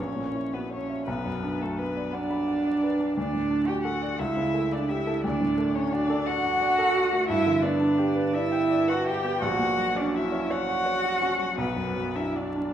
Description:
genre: classical, slow romantic movement for piano trio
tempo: 57 BPM (dotted quarters)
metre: 6/8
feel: uneven beats, rubato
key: B minor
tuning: A4 = 440 Hz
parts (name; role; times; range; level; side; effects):
- muted violin; melody; 0.0-12.7 s; A4 to G5; -31 LUFS; left 7 dB; none
- muted cello; second line; 0.0-12.7 s; A3 to G4; -26 LUFS; right 3 dB; none
- clear grand piano; accompaniment; 0.0-12.7 s; A#1 to B5; -29 LUFS; left 1 dB; none
room: wet recital hall reverb, RT60 1.7 s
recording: minimal, uncompressed stereo recording, vinyl crackle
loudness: -23 LUFS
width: side -10 dB against mid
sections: 0.0-12.7 A section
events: none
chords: 0.0 F#7/A#; 1.1 Bm; 3.2 D; 4.2 A7/C#; 5.2 D; 7.3 G; 9.4 F#/A#; 11.6 Bm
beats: | 1.07 2.14 | 3.17 4.19 | 5.24 6.27 | 7.29 8.34 | 9.42 10.50 | 11.59

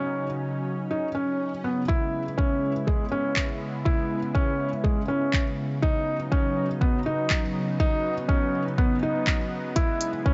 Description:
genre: piano and strings electronica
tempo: 122 BPM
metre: 4/4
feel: straight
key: C# minor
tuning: A4 = 440 Hz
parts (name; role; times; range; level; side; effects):
- lush unison pad; sustained chords; 0.0-10.3 s; C#3 to E4; -33 LUFS; equal; chorus, sidechain pumping
- felt-muted upright piano; riff; 0.0-10.3 s; G#3 to E4; -30 LUFS; equal; digital delay
- swell and riser; sound effects; 1.2-1.9, 9.8-10.3 s; none; -48 LUFS; equal; none
- electronic kick drum; drums; 1.9-10.3 s; none; -27 LUFS; equal; none
- organic electronic drum kit; drums; 3.4-10.1 s; handclaps, hi-hat; -32 LUFS; equal; none
room: light reverb, digital ambience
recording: nothing above 7.8 kHz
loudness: -26 LUFS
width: mono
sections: 0.0-1.9 A section; 1.9-10.3 B section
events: swell 1.2-1.9; build-up 1.9-10.3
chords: 0.0 Badd9/C# (rootless); 1.9 C#m7; 5.8 Badd9/C#; 9.8 C#m7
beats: 0.42 0.91 1.40 | 1.89 2.38 2.88 3.37 | 3.86 4.35 4.84 5.34 | 5.83 6.32 6.81 7.30 | 7.79 8.29 8.78 9.27 | 9.76 10.25

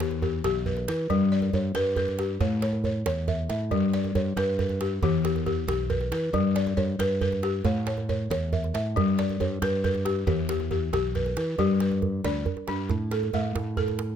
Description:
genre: west african traditional, West African string and xylophone music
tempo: 92 BPM (dotted quarters)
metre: 12/8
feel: straight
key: G lydian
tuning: A4 = 435 Hz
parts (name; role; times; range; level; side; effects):
- balafon; arpeggios; 0.0-14.2 s; E3 to E5; -26 LUFS; left 3 dB; none
- modern bright fingered electric bass; bass; 0.0-14.2 s; B1 to E3; -29 LUFS; equal; none
- djembe; percussion; 0.0-14.1 s; none; -31 LUFS; right 6 dB; none
room: light reverb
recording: close, detailed microphones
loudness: -24 LUFS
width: side -9 dB against mid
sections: 0.0-11.6 A section; 11.6-14.2 B section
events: none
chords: 0.0 Em; 1.1 G; 2.4 A; 3.7 G; 5.0 Em; 6.3 G; 7.6 A; 9.0 G; 10.3 Em; 11.6 G; 12.9 A5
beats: 0.44 | 1.10 1.75 2.40 3.06 | 3.71 4.37 5.03 5.68 | 6.34 6.99 7.65 8.30 | 8.96 9.62 10.27 10.93 | 11.58 12.24 12.89 13.55

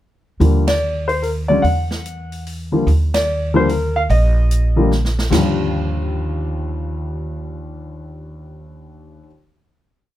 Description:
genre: jazz piano trio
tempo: 147 BPM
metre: 3/4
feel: swing 65% on 8ths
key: Eb major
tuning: A4 = 435 Hz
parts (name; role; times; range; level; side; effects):
- dark grand piano; melody; 0.4-9.3 s; Eb2 to F#5; -19 LUFS; left 2 dB; none
- upright bass; bass; 0.4-9.2 s; Bb1 to E2; -19 LUFS; right 1 dB; none
- open jazz drum kit; drums; 0.4-5.4 s; crash cymbal, hi-hat, kick drum, ride cymbal, snare drum, toms; -27 LUFS; right 3 dB; none
room: little or no reverb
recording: close, detailed microphones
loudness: -15 LUFS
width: side -13 dB against mid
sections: 0.4-5.3 A section; 5.3-7.8 final chord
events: band accent 0.6, 3.1; drum fill 4.9-5.3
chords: 0.4 Ebmaj7(no3); 1.6 Esus2; 2.9 Ebmaj7(no3); 5.3 Ebmaj9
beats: | 0.41 0.81 1.23 | 1.64 2.05 2.46 | 2.87 3.28 3.69 | 4.10 4.50 4.91 | 5.32 5.73 6.14 | 6.54 6.95 7.36

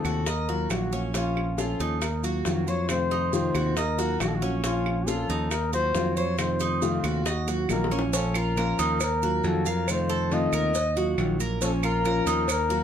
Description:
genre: latin, Cuban son and guajira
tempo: 137 BPM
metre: 4/4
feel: straight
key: Bb harmonic minor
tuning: A4 = 438 Hz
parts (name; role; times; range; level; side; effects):
- trumpet with bucket mute; melody; 0.0-12.8 s; F4 to Eb5; -29 LUFS; left 2 dB; none
- nylon-string guitar; accompaniment; 0.0-12.8 s; C3 to F4; -29 LUFS; left 3 dB; none
- Cuban tres; arpeggios; 0.0-12.8 s; Db4 to F5; -31 LUFS; right 6 dB; none
- modern bright picked electric bass; bass; 0.0-12.8 s; Bb1 to F2; -29 LUFS; right 1 dB; none
- bongos and cowbell; percussion; 0.0-12.7 s; none; -34 LUFS; left 4 dB; none
- claves; percussion; 0.0-12.7 s; none; -35 LUFS; right 6 dB; none
- maracas; percussion; 0.0-12.8 s; none; -38 LUFS; right 7 dB; none
room: moderate studio reverb, RT60 0.5 s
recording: none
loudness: -23 LUFS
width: side -8 dB against mid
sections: 0.0-8.1 A section; 8.1-12.8 B section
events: drum fill 7.7-8.1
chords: 0.3 Ebmadd9; 1.1 Bbm; 2.0 Ebmadd9; 2.9 F7; 3.8 Ebmadd9; 4.6 Bbm; 5.5 Ebmadd9; 6.4 F7; 7.3 Ebmadd9; 8.1 Bbm; 9.0 Ebmadd9; 9.9 F7; 10.7 Ebmadd9; 11.6 Bbm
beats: 0.27 0.71 | 1.14 1.58 2.02 2.46 | 2.89 3.33 3.77 4.21 | 4.64 5.08 5.52 5.96 | 6.39 6.83 7.26 7.70 | 8.14 8.57 9.01 9.44 | 9.88 10.31 10.75 11.18 | 11.62 12.05 12.48

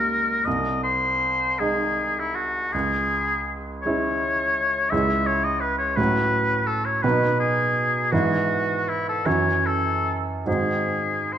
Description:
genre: classical, romantic duo for oboe and grand piano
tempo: 45-57 BPM (dotted quarters)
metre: 6/8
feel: rubato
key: C# minor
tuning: A4 = 436 Hz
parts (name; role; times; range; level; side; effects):
- clear oboe; melody; 0.0-11.4 s; E4 to E5; -23 LUFS; left 2 dB; none
- clear baby grand piano; accompaniment; 0.0-11.4 s; B#1 to F#4; -24 LUFS; right 2 dB; none
room: wet recital hall reverb, RT60 1.4 s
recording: dark, warm production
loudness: -20 LUFS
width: side -10 dB against mid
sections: 0.0-11.4 A section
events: none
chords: 0.5 G#/B#; 2.7 C#m; 6.0 F#m/A; 7.0 B; 8.1 E/G#; 9.3 F#m7; 10.5 G#7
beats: | 0.46 1.60 | 2.73 3.84 | 4.92 5.98 | 7.04 8.12 | 9.26 10.47

